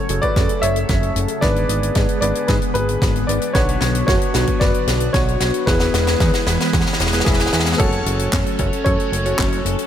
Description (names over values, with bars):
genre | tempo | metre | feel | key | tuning
italo disco | 113 BPM | 4/4 | straight | F# minor | A4 = 439 Hz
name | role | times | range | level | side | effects
dark grand piano | melody | 0.0-9.6 s | E4 to E5 | -23 LUFS | equal | digital delay
phased string machine | sustained chords | 0.0-9.9 s | C#3 to A4 | -24 LUFS | left 1 dB | ensemble chorus, phaser
warm electric grand piano | stabs | 0.0-9.9 s | C#3 to C#5 | -26 LUFS | equal | low-pass filter, ping-pong delay
fat analog bass | bass | 0.1-9.8 s | E1 to G#2 | -21 LUFS | equal | tube saturation
tight funk drum kit | drums | 0.1-9.9 s | crash cymbal, handclaps, hi-hat, snare drum | -24 LUFS | left 2 dB | high-pass filter on hats, high-pass filter on cymbals, high-pass filter on snare, high-pass filter on room
electronic kick drum | drums | 0.2-9.5 s | none | -21 LUFS | equal | none
room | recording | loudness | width
light reverb, small room ambience | none | -15 LUFS | side -10 dB against mid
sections
0.0-7.8 A section; 7.8-9.9 B section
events
drum fill 0.0-7.8; filter sweep on string machine 0.0-7.8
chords
0.0 F#m; 1.4 G#dim; 3.5 Bm; 5.7 E; 7.8 F#m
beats
0.36 0.89 | 1.42 1.96 2.49 3.02 | 3.55 4.08 4.61 5.14 | 5.67 6.20 6.73 7.26 | 7.80 8.33 8.86 9.39